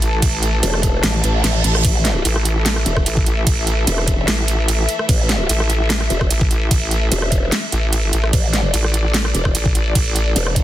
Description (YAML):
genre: heavy wobble dubstep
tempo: 148 BPM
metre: 4/4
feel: half-time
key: unclear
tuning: A4 = 440 Hz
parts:
  - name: warm studio string section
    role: sustained chords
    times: 0.0-10.6 s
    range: E3 to A5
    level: -25 LUFS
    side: left 2 dB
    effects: sidechain pumping, low-pass filter
  - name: vowel-sweep wobble bass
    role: bass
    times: 0.0-10.3 s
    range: A1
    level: -18 LUFS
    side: equal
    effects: chorus, overdrive
  - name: dubstep drum kit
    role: drums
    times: 0.0-10.6 s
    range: crash cymbal, hi-hat, rim click, snare drum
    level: -21 LUFS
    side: right 2 dB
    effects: none
  - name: electronic kick drum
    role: drums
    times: 0.2-10.6 s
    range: none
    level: -18 LUFS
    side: equal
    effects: none
  - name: growl bass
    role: bass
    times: 0.6-10.6 s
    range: E1 to A1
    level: -18 LUFS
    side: equal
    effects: chorus, overdrive
  - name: reverse cymbal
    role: sound effects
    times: 1.2-1.8 s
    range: none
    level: -24 LUFS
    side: right 5 dB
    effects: none
room: little or no reverb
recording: dense, heavily limited modern master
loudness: -15 LUFS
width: side -13 dB against mid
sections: 0.0-10.6 A section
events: reverse cymbal 1.2-1.8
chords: 0.0 A5